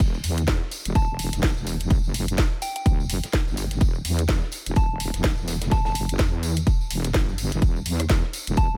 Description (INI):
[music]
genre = bass house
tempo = 126 BPM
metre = 4/4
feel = swing 58% on 16ths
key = E minor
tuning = A4 = 439 Hz
[part]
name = wobble bass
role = bass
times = 0.0-8.8 s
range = E1 to E2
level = -29 LUFS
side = equal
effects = chorus, overdrive, sidechain pumping
[part]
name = crunchy breakbeat drum kit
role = drums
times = 0.0-8.7 s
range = hi-hat, shaker, snare drum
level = -44 LUFS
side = equal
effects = none
[part]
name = electronic kick drum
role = drums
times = 0.0-8.7 s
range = none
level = -24 LUFS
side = equal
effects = none
[part]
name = house drum kit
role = drums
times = 0.0-8.7 s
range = hi-hat, rim click, snare drum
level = -32 LUFS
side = equal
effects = none
[part]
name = tambourine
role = percussion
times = 0.0-8.7 s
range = none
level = -39 LUFS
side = equal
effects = none
[part]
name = soft synth bell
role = melody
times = 1.0-8.8 s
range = G5 to A5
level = -34 LUFS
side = equal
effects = chorus, phaser
[sound]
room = small room ambience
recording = none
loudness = -24 LUFS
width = mono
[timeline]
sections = 0.0-8.8 A section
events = none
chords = none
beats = | 0.00 0.48 0.95 1.43 | 1.91 2.38 2.86 3.33 | 3.81 4.29 4.76 5.24 | 5.71 6.19 6.67 7.14 | 7.62 8.10 8.57